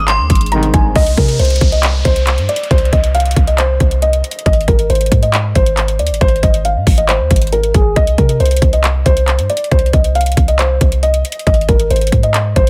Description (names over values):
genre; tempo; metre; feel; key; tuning
hip hop, trap; 137 BPM; 4/4; half-time; C minor; A4 = 441 Hz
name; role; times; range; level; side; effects
dark concert grand piano; melody; 0.0-12.7 s; Ab4 to C6; -19 LUFS; equal; low-pass filter, tape echo
metallic FM bell; second line; 0.0-0.5 s; C6; -26 LUFS; equal; chorus, tape echo
ethereal airy pad; sustained chords; 0.1-0.9 s; Ab3 to C5; -36 LUFS; equal; none
clean 808-style bass; bass; 0.0-12.7 s; Ab1 to C3; -17 LUFS; equal; none
trap drum kit; drums; 0.1-12.7 s; handclaps, hi-hat, kick drum; -16 LUFS; equal; none
warm brass ensemble; stabs; 0.5-0.9 s; C2 to Eb3; -22 LUFS; equal; tape echo
downlifter; sound effects; 1.0-4.5 s; none; -28 LUFS; equal; none
room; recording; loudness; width
digital ambience; none; -13 LUFS; mono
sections
1.0-12.7 A section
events
none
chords
0.0 Ab; 1.0 Cm; 4.5 Ab; 8.0 Cm; 11.5 Ab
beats
0.08 0.52 | 0.96 1.39 1.83 2.27 | 2.71 3.15 3.58 4.02 | 4.46 4.90 5.33 5.77 | 6.21 6.65 7.09 7.53 | 7.96 8.40 8.84 9.28 | 9.71 10.15 10.59 11.03 | 11.47 11.90 12.34